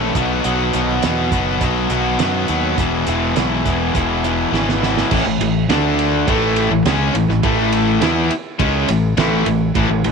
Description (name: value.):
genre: classic rock.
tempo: 103 BPM.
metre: 4/4.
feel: straight.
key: A major from 5.1 s.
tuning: A4 = 440 Hz.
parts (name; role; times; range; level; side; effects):
cranked stack guitar; riff; 0.0-10.1 s; E2 to E4; -19 LUFS; left 14 dB; overdrive.
overdriven electric guitar; riff; 0.0-10.1 s; A2 to F#4; -21 LUFS; right 13 dB; none.
growling fingered electric bass; bass; 0.0-10.1 s; E1 to F#2; -22 LUFS; equal; overdrive.
cloth-damped thuddy drum kit; drums; 0.1-10.1 s; crash cymbal, hi-hat, kick drum, ride cymbal, snare drum; -22 LUFS; right 5 dB; none.
crunchy overdriven guitar; riff; 5.1-10.1 s; A2 to E4; -21 LUFS; left 1 dB; none.
room: little or no reverb.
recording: 1960s-style stereo with parts hard left and right.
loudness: -15 LUFS.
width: side -5 dB against mid.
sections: 0.0-5.1 A section; 5.1-10.1 B section.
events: drum fill 4.5-5.1.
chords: 0.2 B; 2.8 E; 5.1 A5; 5.7 D5; 6.3 A.